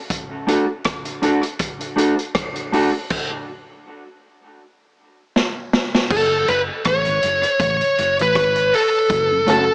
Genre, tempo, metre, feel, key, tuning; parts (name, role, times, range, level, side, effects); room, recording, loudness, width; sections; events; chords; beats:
dub reggae; 80 BPM; 4/4; swing 57% on 16ths; F# minor; A4 = 440 Hz
vintage drum kit; drums; 0.1-9.7 s; crash cymbal, hi-hat, kick drum, rim click, snare drum; -22 LUFS; equal; tape echo
mellow electric guitar; accompaniment; 0.5-9.6 s; A3 to A4; -21 LUFS; equal; high-pass filter, tape echo
high-gain lead guitar; melody; 6.1-9.7 s; A4 to C#5; -16 LUFS; equal; distortion, tape echo
vintage muted fingered electric bass; bass; 6.1-9.7 s; F#1 to A1; -27 LUFS; equal
mellow tonewheel organ; accompaniment; 6.3-9.6 s; F#2 to F#4; -24 LUFS; equal; chorus vibrato, slow rotary speaker, high-pass filter
light reverb, studio ambience; small speaker sound; -16 LUFS; side -31 dB against mid
0.0-6.1 A section; 6.1-9.7 B section
break 0.0-6.1; stop 3.1-6.1; filter sweep 3.1-9.1; drum fill 5.4-6.1
0.1 D; 3.1 N.C.; 6.1 F#m
| 0.10 0.85 1.60 2.35 | 3.10 3.86 4.61 5.36 | 6.11 6.85 7.60 8.35 | 9.10